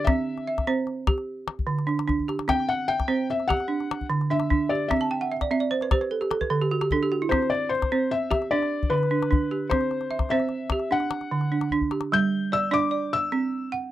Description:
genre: west african traditional, West African string and xylophone music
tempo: 100 BPM (dotted quarters)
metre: 12/8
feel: straight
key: unclear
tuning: A4 = 439 Hz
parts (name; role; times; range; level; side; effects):
- felt-muted upright piano; melody; 0.0-13.7 s; B4 to G6; -26 LUFS; left 4 dB; none
- balafon; arpeggios; 0.0-13.9 s; D3 to A5; -25 LUFS; right 4 dB; none
- calabash; percussion; 0.1-12.1 s; none; -27 LUFS; left 2 dB; none
room: light reverb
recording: dry, close 1970s-style studio recording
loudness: -22 LUFS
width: side -13 dB against mid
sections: 0.0-12.1 A section; 12.1-13.9 B section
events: drum fill 2.2-2.5, 11.7-12.1; balafon fill 5.0-7.3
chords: 0.1 C; 1.3 Dsus4; 2.5 C; 3.7 D; 4.9 C; 6.1 N.C.; 7.3 C5; 8.5 G/D; 9.7 C; 10.9 D; 12.1 G5; 13.3 C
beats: | 0.08 0.68 1.29 1.89 | 2.49 3.10 3.70 4.30 | 4.91 5.51 6.11 6.71 | 7.31 7.92 8.52 9.12 | 9.72 10.32 10.92 11.52 | 12.12 12.72 13.32

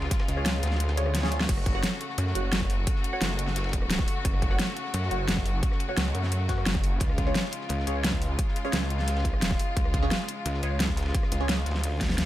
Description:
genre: dark technical drum and bass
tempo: 174 BPM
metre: 4/4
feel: straight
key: F# harmonic minor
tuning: A4 = 440 Hz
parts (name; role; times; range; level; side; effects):
- clear studio string section; sustained chords; 0.0-12.3 s; C#3 to F#4; -34 LUFS; left 2 dB; sidechain pumping
- snarling distorted saw bass; bass; 0.0-12.3 s; F#1 to F#2; -28 LUFS; equal; distortion, sidechain pumping
- crunchy breakbeat drum kit; drums; 0.0-12.3 s; hi-hat, ride cymbal, snare drum; -43 LUFS; equal; none
- dubstep drum kit; drums; 0.1-12.2 s; crash cymbal, hi-hat, rim click, snare drum; -30 LUFS; equal; overdrive
- electronic kick drum; drums; 0.1-12.1 s; none; -28 LUFS; equal; overdrive
- filtered dub chord stab; stabs; 0.4-11.5 s; C#4 to F#5; -36 LUFS; right 1 dB; phaser, lush chorus, ping-pong delay
room: small room ambience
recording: none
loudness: -24 LUFS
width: side -14 dB against mid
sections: 0.0-12.3 A section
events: kick drops out 0.8-1.5; drum fill 1.1-1.5, 12.0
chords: 0.0 C#; 1.5 F#m; 7.0 C#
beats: | 0.11 0.46 0.80 1.15 | 1.49 1.84 2.18 2.52 | 2.87 3.21 3.56 3.90 | 4.25 4.59 4.94 5.28 | 5.63 5.97 6.32 6.66 | 7.01 7.35 7.70 8.04 | 8.39 8.73 9.08 9.42 | 9.77 10.11 10.46 10.80 | 11.15 11.49 11.84 12.18

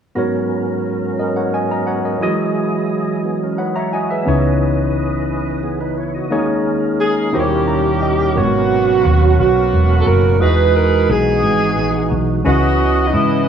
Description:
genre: slow gospel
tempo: 59 BPM (dotted quarters)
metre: 6/8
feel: straight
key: G# minor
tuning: A4 = 440 Hz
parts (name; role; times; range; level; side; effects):
- barky tine electric piano; accompaniment; 0.2-13.5 s; G#2 to A#5; -19 LUFS; left 2 dB; medium stereo tremolo
- percussive tonewheel organ; sustained chords; 0.2-13.5 s; D#2 to E5; -21 LUFS; right 4 dB; slow rotary speaker, overdrive, chorus vibrato
- hollow-body short-scale fingered electric bass; bass; 4.3-13.4 s; E1 to G#2; -17 LUFS; equal; none
- bright saxophone section; melody; 7.0-13.5 s; A#3 to D#5; -20 LUFS; right 1 dB; none
- warm alto saxophone; melody; 7.0-13.5 s; D#4 to B4; -18 LUFS; right 4 dB; none
room: moderate echo chamber reverb, RT60 1.7 s, small room ambience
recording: worn, warbling old tape, cassette tape, warbly pitch drift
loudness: -14 LUFS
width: side -8 dB against mid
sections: 0.2-8.4 A section; 8.4-13.5 B section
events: tine electric piano fill 7.3-8.4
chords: 0.2 G#m11; 2.2 Emaj9; 4.3 C#m9; 6.3 D#7sus4; 7.3 D#7b9b13; 8.4 G#m11; 10.4 Emaj9; 12.5 C#m9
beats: | 0.16 1.19 | 2.21 3.24 | 4.26 5.29 | 6.32 7.34 | 8.36 9.39 | 10.41 11.43 | 12.45 13.47

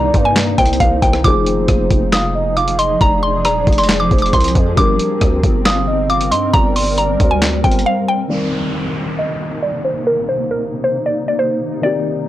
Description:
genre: hip hop, trap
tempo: 136 BPM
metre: 4/4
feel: half-time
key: C minor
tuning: A4 = 440 Hz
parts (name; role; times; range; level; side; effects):
- mallet-like synth pluck; melody; 0.0-12.3 s; Bb4 to Eb6; -18 LUFS; equal; chorus, low-pass filter
- soft octave-layered synth lead; second line; 0.0-8.3 s; Bb4 to F5; -21 LUFS; right 2 dB; chorus, tremolo, analog delay
- felt-muted upright piano; accompaniment; 0.0-12.3 s; Eb3 to Bb4; -24 LUFS; left 3 dB; low-pass filter
- granular cloud pad; sustained chords; 0.0-12.3 s; C3 to Bb4; -22 LUFS; equal; built-in reverb, low-pass filter
- growling 808-style bass; bass; 0.0-7.9 s; Eb1 to G2; -19 LUFS; equal; none
- dusty soul sampler-style drum kit; drums; 0.1-7.9 s; handclaps, hi-hat, kick drum, rim click, snare drum; -16 LUFS; equal; none
- downlifter and riser; sound effects; 8.3-12.3 s; none; -29 LUFS; equal; none
room: digital ambience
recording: dry, gritty hardware recording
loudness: -13 LUFS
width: side -14 dB against mid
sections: 0.0-8.3 A section; 8.3-12.3 B section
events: break 7.9-8.3; filter sweep 8.3-12.3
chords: 0.0 Cm7; 1.2 Fm7; 4.8 Gm; 8.3 Cm7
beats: 0.36 0.80 | 1.24 1.69 2.13 2.57 | 3.01 3.45 3.89 4.33 | 4.77 5.21 5.66 6.10 | 6.54 6.98 7.42 7.86 | 8.30 8.74 9.19 9.63 | 10.07 10.51 10.95 11.39 | 11.83 12.27

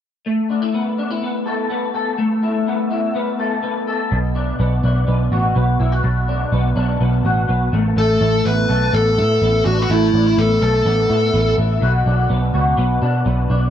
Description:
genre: jangly indie pop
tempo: 125 BPM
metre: 4/4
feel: straight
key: unclear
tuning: A4 = 440 Hz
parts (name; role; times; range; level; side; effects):
- electric guitar through a small old amp; arpeggios; 0.3-13.7 s; B2 to A4; -19 LUFS; left 2 dB; ensemble chorus, ping-pong delay
- vintage muted picked electric bass; bass; 4.1-13.7 s; A1 to B2; -17 LUFS; right 1 dB; none
- dark smooth lead guitar; melody; 8.0-11.5 s; E4 to B4; -18 LUFS; equal; overdrive, ping-pong delay
room: wet small room reverb, RT60 0.6 s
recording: dark, warm production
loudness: -15 LUFS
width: side -10 dB against mid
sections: 0.3-8.0 A section; 8.0-13.7 B section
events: none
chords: 0.3 Asus2; 4.1 Bm; 7.7 N.C.; 8.0 Asus2; 11.8 Bm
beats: | 0.27 0.75 1.23 1.71 | 2.19 2.67 3.15 3.63 | 4.12 4.60 5.08 5.56 | 6.04 6.52 7.01 7.49 | 7.97 8.45 8.93 9.41 | 9.90 10.38 10.86 11.34 | 11.82 12.30 12.78 13.26

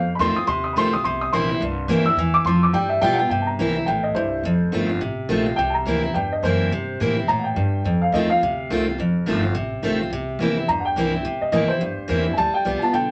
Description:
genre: rockabilly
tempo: 212 BPM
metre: 4/4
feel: swing 59% on 8ths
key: C mixolydian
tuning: A4 = 440 Hz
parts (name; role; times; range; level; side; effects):
- dark upright piano; melody; 0.0-13.1 s; E4 to E6; -24 LUFS; equal; none
- picked steel-string acoustic guitar; accompaniment; 0.0-13.1 s; F2 to F4; -24 LUFS; equal; none
- upright bass; bass; 0.0-13.1 s; F1 to C3; -31 LUFS; equal; none
room: moderate small room reverb, RT60 0.5 s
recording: none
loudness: -21 LUFS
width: mono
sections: 0.0-3.3 A section; 3.3-13.1 B section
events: upright piano solo 0.0-3.3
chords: 0.0 F7; 1.1 C7; 2.7 G7; 3.3 C7; 4.4 F7; 5.6 C7; 7.8 F7; 10.1 C7; 12.4 G7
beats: 0.20 0.48 0.77 | 1.05 1.33 1.62 1.90 | 2.18 2.46 2.75 3.03 | 3.31 3.60 3.88 4.16 | 4.45 4.73 5.01 5.30 | 5.58 5.86 6.14 6.43 | 6.71 7.00 7.28 7.56 | 7.85 8.13 8.41 8.70 | 8.98 9.26 9.55 9.83 | 10.11 10.40 10.68 10.96 | 11.24 11.53 11.81 12.10 | 12.38 12.66 12.95

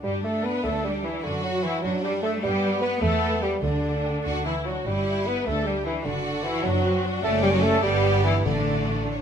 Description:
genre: quick classical-period movement for symphony orchestra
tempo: 100 BPM (dotted quarters)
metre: 6/8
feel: rubato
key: G major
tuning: A4 = 440 Hz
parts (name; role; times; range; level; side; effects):
- clear studio violin section; second line; 0.0-9.2 s; A3 to F#4; -31 LUFS; left 1 dB; none
- clear studio viola section; accompaniment; 0.0-9.1 s; D4 to B4; -29 LUFS; left 2 dB; none
- mellow bassoon; accompaniment; 0.0-9.1 s; D3 to B3; -28 LUFS; right 1 dB; none
- clear studio cello section; bass; 0.0-9.1 s; D3 to B3; -29 LUFS; equal; none
- rich studio double bass section; bass; 0.0-9.2 s; F#1 to G2; -29 LUFS; right 2 dB; none
- rich studio violin section; melody; 0.4-9.2 s; F#4 to D5; -36 LUFS; left 4 dB; none
- timpani; percussion; 3.6-4.2, 8.5-9.1 s; A2 to D3; -32 LUFS; left 3 dB; none
room: moderate recital hall reverb, RT60 1.3 s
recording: close, detailed microphones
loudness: -22 LUFS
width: side -8 dB against mid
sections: 0.0-9.2 A section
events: none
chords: 0.0 G; 1.2 D7/F#; 2.4 G; 3.0 Em; 3.6 G5/D; 4.2 D; 4.9 G; 6.1 D7/F#; 7.2 D/F#; 7.8 Em7/G; 8.5 D5/A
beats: | 0.04 0.65 | 1.25 1.84 | 2.42 3.02 | 3.63 4.25 | 4.86 5.46 | 6.05 6.64 | 7.23 7.83 | 8.46 9.11

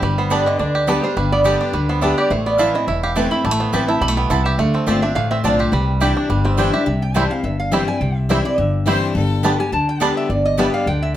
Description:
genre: bluegrass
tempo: 210 BPM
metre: 4/4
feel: swing 54% on 8ths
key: C major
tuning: A4 = 440 Hz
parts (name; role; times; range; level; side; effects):
- lap resonator guitar; melody; 0.0-11.1 s; G4 to B5; -22 LUFS; right 1 dB; none
- picked steel-string acoustic guitar; accompaniment; 0.0-11.2 s; E2 to G4; -21 LUFS; left 3 dB; none
- bluegrass banjo; arpeggios; 0.0-10.7 s; D3 to G4; -22 LUFS; right 4 dB; none
- upright bass; bass; 0.0-11.2 s; E1 to D2; -22 LUFS; equal; none
- mandolin; stabs; 0.3-10.7 s; B3 to A5; -25 LUFS; right 4 dB; none
- clear fiddle; second line; 8.9-9.5 s; A4 to C5; -28 LUFS; left 7 dB; none
room: moderate studio reverb, RT60 0.8 s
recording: none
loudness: -15 LUFS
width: side -12 dB against mid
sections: 0.0-6.9 A section; 6.9-11.2 A section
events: resonator guitar played with a steel bar solo 0.0-11.2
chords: 0.0 Gadd9; 2.3 Amadd9; 4.6 Dm7; 5.7 Cadd9; 6.9 C; 9.2 Gadd9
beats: | 0.02 0.31 0.59 0.88 | 1.17 1.45 1.74 2.02 | 2.31 2.59 2.88 3.16 | 3.45 3.73 4.02 4.30 | 4.59 4.87 5.16 5.45 | 5.73 6.01 6.30 6.59 | 6.87 7.16 7.44 7.73 | 8.01 8.30 8.58 8.87 | 9.15 9.44 9.73 10.01 | 10.30 10.58 10.87 11.15

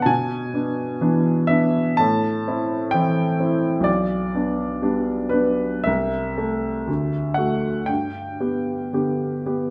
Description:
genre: classical, romantic nocturne for solo piano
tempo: 55-67 BPM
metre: 4/4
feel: rubato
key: G major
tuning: A4 = 440 Hz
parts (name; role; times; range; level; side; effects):
- clear upright piano; solo; 0.0-9.7 s; B1 to A5; -22 LUFS; equal; none
room: wet recital hall reverb, RT60 1.4 s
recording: none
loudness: -22 LUFS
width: mono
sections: 0.0-9.7 A section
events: none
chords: 0.1 E7/B; 2.0 Am; 3.9 G/B; 5.9 Am/C; 6.9 D; 7.9 G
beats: | 0.09 1.01 2.01 2.95 | 3.87 4.82 5.87 6.88 | 7.89 8.93

